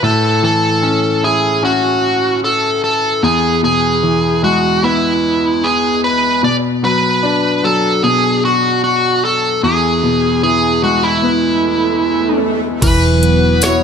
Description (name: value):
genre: pop ballad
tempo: 75 BPM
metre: 4/4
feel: straight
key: unclear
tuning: A4 = 439 Hz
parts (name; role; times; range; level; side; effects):
- smooth overdriven lead guitar; melody; 0.0-13.8 s; E4 to D5; -14 LUFS; right 1 dB; none
- clear concert grand piano; accompaniment; 0.0-13.8 s; E2 to F#4; -16 LUFS; left 2 dB; none
- swell; sound effects; 11.1-12.8 s; none; -23 LUFS; right 6 dB; none
- sweeping resonant pad; sustained chords; 12.8-13.8 s; E3 to B3; -17 LUFS; right 2 dB; chorus
- vintage muted fingered electric bass; bass; 12.8-13.8 s; E1; -15 LUFS; right 1 dB; none
- smooth R&B drum kit; drums; 12.8-13.8 s; crash cymbal, hi-hat, kick drum, snare drum; -17 LUFS; equal; none
- tambourine; percussion; 13.6-13.8 s; none; -23 LUFS; left 8 dB; none
room: light reverb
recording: none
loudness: -12 LUFS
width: side -7 dB against mid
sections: 0.0-12.8 A section; 12.8-13.8 B section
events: swell 11.1-12.8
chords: 0.0 A6; 3.2 E; 6.4 Bm; 9.6 E; 12.8 Esus2